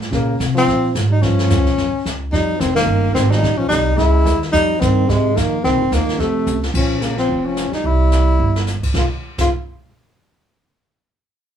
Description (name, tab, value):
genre	jazz, small-group swing and bop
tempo	218 BPM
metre	4/4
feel	swing 59% on 8ths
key	F minor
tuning	A4 = 438 Hz
part	upright bass	bass	0.0-9.5 s	F1 to C3	-18 LUFS	right 1 dB	none
part	jazz brush drum kit	drums	0.0-9.4 s	brushed snare drum, crash cymbal, hi-hat, kick drum, ride cymbal, snare drum	-24 LUFS	equal	none
part	breathy tenor saxophone	melody	0.1-9.5 s	Ab3 to F4	-18 LUFS	left 2 dB	none
part	breathy trombone	second line	0.1-9.5 s	Ab2 to Ab3	-23 LUFS	right 3 dB	none
room	moderate studio reverb, RT60 0.6 s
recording	band playing live in one room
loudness	-14 LUFS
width	side -9 dB against mid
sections	0.0-6.7 A section; 6.7-8.9 B section; 8.9-10.0 C section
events	band accent 2.7; drum fill 6.5, 8.4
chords	0.1 Bbm9; 1.2 Gm7b5; 1.8 Gb5; 2.3 Fm9; 3.4 Eb6/Bb; 4.0 Dbmadd9; 4.5 Fm9; 5.6 Cm7b5; 6.2 F; 6.7 Bbm; 7.8 C; 8.9 N.C.